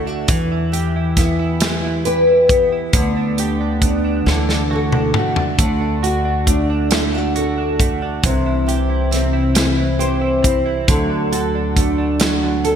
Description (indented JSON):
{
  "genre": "six-eight pop ballad",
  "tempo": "45 BPM (dotted quarters)",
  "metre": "6/8",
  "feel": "straight",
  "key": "unclear",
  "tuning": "A4 = 440 Hz",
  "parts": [
    { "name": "nylon-string guitar", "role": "accompaniment", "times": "0.0-12.8 s", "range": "C3 to C5", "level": "-18 LUFS", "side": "left 1 dB", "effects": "double-tracked left and right" },
    { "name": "direct-recorded clean electric guitar", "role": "arpeggios", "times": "0.0-12.8 s", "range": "E3 to A4", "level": "-24 LUFS", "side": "right 7 dB", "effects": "analog chorus" },
    { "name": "upright bass", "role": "bass", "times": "0.0-12.8 s", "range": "C2 to E2", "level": "-21 LUFS", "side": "equal", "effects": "none" },
    { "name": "modern studio drum kit", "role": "drums", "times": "0.3-12.8 s", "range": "hi-hat, kick drum, snare drum, toms", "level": "-19 LUFS", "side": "equal", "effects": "gated reverb" }
  ],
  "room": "moderate lush hall reverb, RT60 2.8 s",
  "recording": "bright 1980s-style digital production",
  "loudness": "-15 LUFS",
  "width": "side -8 dB against mid",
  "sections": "0.0-12.8 A section",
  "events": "drum fill 4.3-5.6",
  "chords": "0.3 Em; 2.9 G/D; 4.3 Dadd9; 8.2 C; 10.9 D"
}